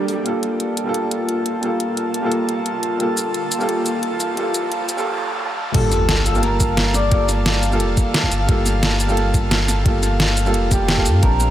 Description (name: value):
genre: liquid drum and bass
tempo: 175 BPM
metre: 4/4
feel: swing 54% on 16ths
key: G minor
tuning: A4 = 441 Hz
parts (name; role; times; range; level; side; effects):
- warm baby grand piano; accompaniment; 0.0-11.5 s; G3 to A5; -22 LUFS; right 1 dB; analog delay
- airy breathy pad; sustained chords; 0.0-11.5 s; Bb3 to A5; -25 LUFS; equal; chorus, sidechain pumping
- swell, riser, noise sweep and sub drop; sound effects; 0.0-7.1 s; none; -30 LUFS; right 1 dB; none
- pop drum kit; drums; 0.1-11.5 s; crash cymbal, hi-hat, shaker, snare drum; -22 LUFS; equal; overdrive, high-pass filter on hats, high-pass filter on perc, high-pass filter on cymbals, high-pass filter on snare, high-pass filter on room
- warm sub bass; bass; 0.3-11.5 s; F1 to G2; -20 LUFS; equal; tube saturation, high-pass filter
- electric guitar through a small old amp; melody; 5.7-7.3, 11.2-11.5 s; A4 to D5; -26 LUFS; left 1 dB; lush chorus, tape echo
- electronic kick drum; drums; 5.7-11.3 s; none; -18 LUFS; equal; overdrive
room: moderate huge ambient reverb, RT60 7.1 s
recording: dreamy mix soaked in reverb, high-pass filter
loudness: -16 LUFS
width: side -12 dB against mid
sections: 0.3-5.7 A section; 5.7-11.5 B section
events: swell 0.0; build-up 0.3-5.7; riser 0.3-5.7; filter sweep on analog synth pad 0.3-5.7; noise sweep 4.4-5.7; break 5.1-5.7; drop 5.7-11.5; impact 5.7-7.1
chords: 0.3 Gm9